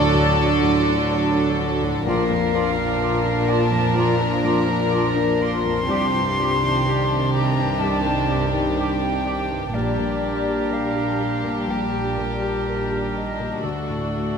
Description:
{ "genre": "cinematic, emotional film score for orchestra", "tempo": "62 BPM", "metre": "4/4", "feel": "rubato", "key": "Bb major", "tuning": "A4 = 440 Hz", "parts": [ { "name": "warm symphonic violin section", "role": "melody", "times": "0.0-14.4 s", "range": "F#4 to Bb4", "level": "-26 LUFS", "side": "left 4 dB", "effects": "none" }, { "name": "clear clarinet", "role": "second line", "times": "0.0-14.4 s", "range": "F4 to G4", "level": "-32 LUFS", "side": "left 3 dB", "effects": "none" }, { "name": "mellow cor anglais", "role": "second line", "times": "0.0-14.4 s", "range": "A4 to D5", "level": "-33 LUFS", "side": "right 6 dB", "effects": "none" }, { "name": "silver concert flute", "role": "second line", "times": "0.0-14.4 s", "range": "D5 to C6", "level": "-28 LUFS", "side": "left 1 dB", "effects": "none" }, { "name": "warm symphonic violin section", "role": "second line", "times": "0.0-14.4 s", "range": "D4", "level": "-30 LUFS", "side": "left 2 dB", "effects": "none" }, { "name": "dark symphonic viola section", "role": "accompaniment", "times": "0.0-14.4 s", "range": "Eb3 to A3", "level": "-30 LUFS", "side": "right 1 dB", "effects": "none" }, { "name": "felt-muted upright piano", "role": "accompaniment", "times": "0.0-14.4 s", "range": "Bb1 to D5", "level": "-28 LUFS", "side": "left 3 dB", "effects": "none" }, { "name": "mellow French horn section", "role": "sustained chords", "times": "0.0-14.4 s", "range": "Eb3 to F#4", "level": "-29 LUFS", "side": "equal", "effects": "none" }, { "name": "rich symphonic double bass section", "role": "bass", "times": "0.0-14.4 s", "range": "Bb1 to D2", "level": "-29 LUFS", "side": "right 5 dB", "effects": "none" }, { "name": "warm studio cello section", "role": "bass", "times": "0.0-14.4 s", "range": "D2 to D3", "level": "-26 LUFS", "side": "right 3 dB", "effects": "none" } ], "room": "moderate scoring stage reverb, RT60 1.7 s", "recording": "none", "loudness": "-19 LUFS", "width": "side -6 dB against mid", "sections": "0.0-14.4 A section", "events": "none", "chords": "0.0 D; 2.1 Bb; 5.9 Cmadd9; 9.7 Gm/Bb; 13.6 D" }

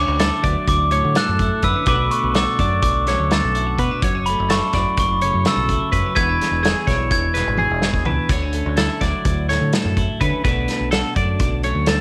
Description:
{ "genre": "math rock and midwest emo", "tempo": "252 BPM (eighths)", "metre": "9/8", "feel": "straight", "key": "unclear", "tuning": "A4 = 440 Hz", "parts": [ { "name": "glockenspiel with soft plastic mallets", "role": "melody", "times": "0.0-8.0 s", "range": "B5 to G#6", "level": "-24 LUFS", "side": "equal", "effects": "cassette tape" }, { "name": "twelve-string electric guitar", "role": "accompaniment", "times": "0.0-12.0 s", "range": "E2 to G#4", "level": "-28 LUFS", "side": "equal", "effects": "cassette tape" }, { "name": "twelve-string electric guitar", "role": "arpeggios", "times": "0.0-12.0 s", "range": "G#4 to D5", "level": "-27 LUFS", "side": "equal", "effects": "cassette tape" }, { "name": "fingered electric bass", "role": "bass", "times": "0.0-12.0 s", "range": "E1 to D3", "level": "-25 LUFS", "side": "equal", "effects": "none" }, { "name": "loose indie drum kit", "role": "drums", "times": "0.2-12.0 s", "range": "hi-hat, kick drum, snare drum, splash cymbal, toms", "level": "-24 LUFS", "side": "equal", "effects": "cassette tape" } ], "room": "light reverb", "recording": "home recording on cassette", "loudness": "-19 LUFS", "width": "mono", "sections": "0.0-12.0 A section", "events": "drum fill 7.6-8.3", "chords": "0.0 Dmaj9; 1.9 Bm7; 4.0 F#m7; 6.2 E7; 8.3 Dmaj9; 10.4 Bm7" }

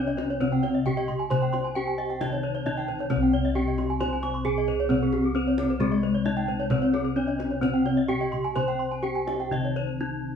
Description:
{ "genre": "Balinese gamelan", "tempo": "133 BPM", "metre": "4/4", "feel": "straight", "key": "C pelog", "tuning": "A4 = 439 Hz", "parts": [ { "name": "gamelan-type bronze metallophone", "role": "melody", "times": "0.0-10.4 s", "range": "Ab3 to C5", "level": "-27 LUFS", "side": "equal", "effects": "none" }, { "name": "gamelan-type bronze metallophone", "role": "accompaniment", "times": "0.0-10.4 s", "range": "C3 to C4", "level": "-37 LUFS", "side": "left 1 dB", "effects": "none" }, { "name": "gamelan-type bronze metallophone", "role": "arpeggios", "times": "0.0-9.9 s", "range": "G4 to Db6+35c", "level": "-34 LUFS", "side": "left 2 dB", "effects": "slapback echo" }, { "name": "gamelan-type bossed gongs", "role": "bass", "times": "0.0-10.4 s", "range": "C2 to C5", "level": "-30 LUFS", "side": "left 3 dB", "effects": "none" }, { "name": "gamelan-type bronze metallophone", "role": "arpeggios", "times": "0.1-9.8 s", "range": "Ab4 to Ab5", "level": "-32 LUFS", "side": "right 3 dB", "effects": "none" }, { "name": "kendang", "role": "percussion", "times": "0.2-9.7 s", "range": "none", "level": "-32 LUFS", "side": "equal", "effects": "none" } ], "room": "moderate studio reverb, RT60 0.7 s", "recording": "band playing live in one room, studio ambience", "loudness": "-23 LUFS", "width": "side -7 dB against mid", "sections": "0.0-10.4 A section", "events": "break 9.8-10.4", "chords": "none" }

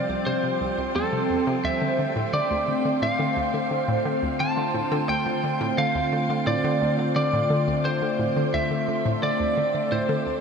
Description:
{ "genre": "ambient, sequencer-driven space music", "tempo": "87 BPM", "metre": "4/4", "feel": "straight", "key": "unclear", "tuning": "A4 = 442 Hz", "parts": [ { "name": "lightly driven lead guitar", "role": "melody", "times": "0.0-10.4 s", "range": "A4 to A5", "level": "-26 LUFS", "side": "equal", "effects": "tape echo" }, { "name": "phased analog pad", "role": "sustained chords", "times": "0.0-10.4 s", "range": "D3 to C5", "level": "-26 LUFS", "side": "equal", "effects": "phaser, chorus" }, { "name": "wind-like tuned noise texture", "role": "texture", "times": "0.0-10.4 s", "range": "G5", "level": "-37 LUFS", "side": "right 2 dB", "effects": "built-in reverb" }, { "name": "hollow square pluck", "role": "riff", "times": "0.1-10.3 s", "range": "C2 to D3", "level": "-29 LUFS", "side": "equal", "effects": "chorus, tape echo" } ], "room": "wet shimmer reverb, RT60 6.5 s", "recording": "none", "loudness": "-22 LUFS", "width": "side -6 dB against mid", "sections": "0.0-10.4 A section", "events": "none", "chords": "0.0 Csus4; 1.6 Dm7" }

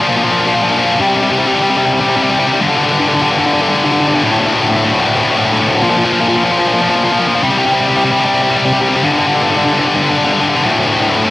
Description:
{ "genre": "metal", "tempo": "150 BPM", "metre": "4/4", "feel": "straight", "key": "unclear", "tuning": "A4 = 440 Hz", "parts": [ { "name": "heavy high-gain guitar", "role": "solo", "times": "0.0-11.3 s", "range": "D2 to G3", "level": "-10 LUFS", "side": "left 1 dB", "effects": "distortion, cassette tape" } ], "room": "moderate booth ambience, RT60 0.2 s", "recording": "home recording on cassette", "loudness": "-10 LUFS", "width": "side -17 dB against mid", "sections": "0.0-11.3 A section", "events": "none", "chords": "0.0 Bb5; 1.0 C5; 2.6 G5; 4.2 D5; 5.8 Bb5; 7.4 C5; 9.0 G5; 10.6 D5" }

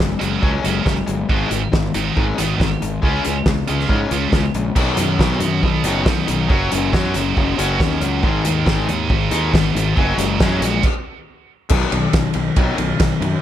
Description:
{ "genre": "indie rock", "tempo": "139 BPM", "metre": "4/4", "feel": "straight", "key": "unclear", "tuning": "A4 = 444 Hz", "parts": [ { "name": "distorted electric guitar", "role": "riff", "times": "0.0-13.4 s", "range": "G#2 to F#4", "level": "-22 LUFS", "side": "left 6 dB", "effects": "overdrive" }, { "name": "fuzz fingered electric bass", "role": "bass", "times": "0.0-13.3 s", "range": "F#1 to G#2", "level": "-22 LUFS", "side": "right 1 dB", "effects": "overdrive" }, { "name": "loose indie drum kit", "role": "drums", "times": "0.0-13.3 s", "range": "crash cymbal, hi-hat, kick drum, ride cymbal, snare drum", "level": "-20 LUFS", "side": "equal", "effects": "none" }, { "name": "scooped high-gain guitar", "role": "riff", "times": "0.2-10.8 s", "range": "G#2 to F#4", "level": "-23 LUFS", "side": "right 8 dB", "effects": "distortion, lush chorus, tape echo" } ], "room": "light reverb", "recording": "none", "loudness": "-16 LUFS", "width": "side -11 dB against mid", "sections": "0.0-4.8 A section; 4.8-11.7 B section; 11.7-13.4 C section", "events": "stop 10.8-11.7", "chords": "0.0 F#sus2; 1.3 G#m; 3.0 C#; 4.8 B; 6.5 F#sus2; 8.2 G#m; 10.0 F#sus2; 11.7 B" }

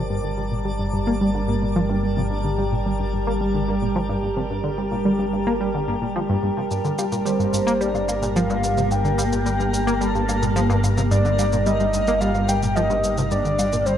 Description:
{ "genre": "ambient, sequencer-driven space music", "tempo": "109 BPM", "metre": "4/4", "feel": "straight", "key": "G minor", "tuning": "A4 = 444 Hz", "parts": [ { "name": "evolving wavetable pad", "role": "sustained chords", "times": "0.0-14.0 s", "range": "G3 to A5", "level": "-25 LUFS", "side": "equal", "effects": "chorus, built-in reverb" }, { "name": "analog drone", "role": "bass", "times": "0.0-14.0 s", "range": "G1", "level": "-26 LUFS", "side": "equal", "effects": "chorus" }, { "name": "twinkling granular texture", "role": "texture", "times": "0.0-14.0 s", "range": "Bb3 to D5", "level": "-32 LUFS", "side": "left 1 dB", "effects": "built-in reverb" }, { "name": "tight sequenced synth", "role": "riff", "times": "0.1-13.9 s", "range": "G2 to Bb3", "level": "-24 LUFS", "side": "equal", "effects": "chorus, analog delay" }, { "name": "shaker and woodblock", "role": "percussion", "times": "6.7-14.0 s", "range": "none", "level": "-32 LUFS", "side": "equal", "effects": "none" }, { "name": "soft octave-layered synth lead", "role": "melody", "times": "7.3-14.0 s", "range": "C5 to A5", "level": "-24 LUFS", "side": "equal", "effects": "chorus, analog delay" } ], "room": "moderate concert hall reverb, RT60 2.2 s", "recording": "none", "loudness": "-19 LUFS", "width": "side -10 dB against mid", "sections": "0.0-14.0 A section", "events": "none", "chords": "0.0 Gmadd9" }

